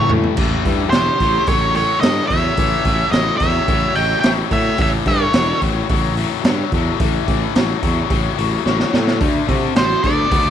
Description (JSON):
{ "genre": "blues rock power trio and southern rock", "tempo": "109 BPM", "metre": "4/4", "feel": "straight", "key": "A mixolydian", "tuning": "A4 = 443 Hz", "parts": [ { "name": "octave-fuzz lead guitar", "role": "melody", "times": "0.0-5.6, 9.8-10.5 s", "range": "C5 to G5", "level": "-19 LUFS", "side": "equal", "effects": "distortion" }, { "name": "overdriven electric guitar", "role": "riff", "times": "0.0-10.5 s", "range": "A2 to B3", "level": "-21 LUFS", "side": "left 13 dB", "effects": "none" }, { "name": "fuzz fingered electric bass", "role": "bass", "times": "0.1-10.5 s", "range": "E1 to C3", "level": "-21 LUFS", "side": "right 1 dB", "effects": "overdrive" }, { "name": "raw garage drum kit", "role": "drums", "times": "0.1-10.4 s", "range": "crash cymbal, hi-hat, kick drum, snare drum, toms", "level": "-19 LUFS", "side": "right 1 dB", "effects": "none" }, { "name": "dark smooth lead guitar", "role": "second line", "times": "0.9-5.6, 9.8-10.5 s", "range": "F#4 to E5", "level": "-25 LUFS", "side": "right 11 dB", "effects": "overdrive" } ], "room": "light reverb, studio ambience", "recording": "1960s-style stereo with parts hard left and right", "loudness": "-14 LUFS", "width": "side -9 dB against mid", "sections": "0.4-10.5 A section", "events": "drum fill 0.0-0.4, 8.7-9.2", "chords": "0.4 A; 9.2 D7(no3)" }